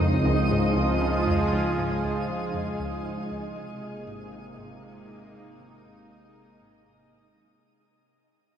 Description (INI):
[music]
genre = ambient, sequencer-driven space music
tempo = 118 BPM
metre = 4/4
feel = straight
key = unclear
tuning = A4 = 440 Hz
[part]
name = sweeping resonant pad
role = sustained chords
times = 0.0-7.6 s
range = C3 to Bb4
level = -28 LUFS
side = right 1 dB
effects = chorus
[part]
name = analog pluck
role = riff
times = 0.0-7.5 s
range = Db2 to Ab3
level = -30 LUFS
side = left 1 dB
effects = chorus, phaser, ping-pong delay
[part]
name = fat analog bass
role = bass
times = 0.0-7.6 s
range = Ab1 to Db2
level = -33 LUFS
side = equal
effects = none
[part]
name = twinkling granular texture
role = texture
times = 0.0-7.6 s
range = Eb4 to Eb5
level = -32 LUFS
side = right 1 dB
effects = built-in reverb
[sound]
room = wet shimmer reverb, RT60 7.8 s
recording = dark, warm production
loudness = -24 LUFS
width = side -9 dB against mid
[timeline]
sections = 0.0-7.6 A section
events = fade-out on synth arpeggio sound 0.0-7.6; fade-out on analog synth bass 0.0-7.6; fade-out 0.0-7.6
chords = 0.0 Db; 3.6 Abadd9